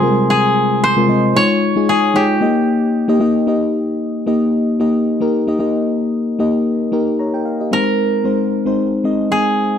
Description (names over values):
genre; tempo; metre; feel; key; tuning
pop; 113 BPM; 4/4; swing 55% on 16ths; unclear; A4 = 440 Hz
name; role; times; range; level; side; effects
koto; melody; 0.0-4.2, 7.7-9.8 s; G4 to Db5; -17 LUFS; right 2 dB; slapback echo
mellow FM electric piano; accompaniment; 0.0-9.8 s; C3 to Bb5; -15 LUFS; left 2 dB; chorus
room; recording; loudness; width
light reverb; dry, close 1970s-style studio recording; -14 LUFS; side -8 dB against mid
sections
0.0-3.5 A section; 3.5-7.7 B section; 7.7-9.8 C section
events
none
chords
0.0 Fm/C; 1.4 Dbadd9; 2.4 Eb; 7.7 Ab